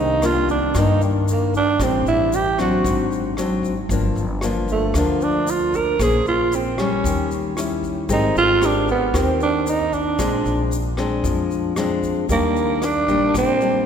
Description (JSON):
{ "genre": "bossa nova", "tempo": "114 BPM", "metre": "4/4", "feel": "straight", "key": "Eb major", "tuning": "A4 = 441 Hz", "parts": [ { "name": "growling tenor saxophone", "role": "melody", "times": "0.0-13.9 s", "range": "G3 to Bb4", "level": "-20 LUFS", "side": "right 4 dB", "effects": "none" }, { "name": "nylon-string guitar", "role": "accompaniment", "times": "0.0-13.9 s", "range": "G2 to C5", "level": "-22 LUFS", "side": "left 4 dB", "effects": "none" }, { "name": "upright bass", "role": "bass", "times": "0.0-13.9 s", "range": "G1 to G2", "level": "-25 LUFS", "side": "equal", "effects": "none" }, { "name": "vintage brush drum kit", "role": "drums", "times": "0.2-13.7 s", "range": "hi-hat, kick drum, rim click", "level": "-31 LUFS", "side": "equal", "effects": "none" }, { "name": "egg shaker", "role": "percussion", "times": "0.2-13.9 s", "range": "none", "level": "-35 LUFS", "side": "left 3 dB", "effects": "none" } ], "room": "wet church reverb, RT60 3.8 s", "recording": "recorded in a church or concert hall", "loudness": "-17 LUFS", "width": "side -7 dB against mid", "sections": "0.0-12.3 A section; 12.3-13.9 B section", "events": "tenor saxophone solo 0.0-12.3", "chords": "0.0 Cm9; 1.8 Am7; 2.9 Ab7#11; 3.9 Gm7; 6.0 Bbm9; 7.0 Eb7b9; 8.1 Abmaj9; 10.2 Bb9; 12.3 Ebmaj7" }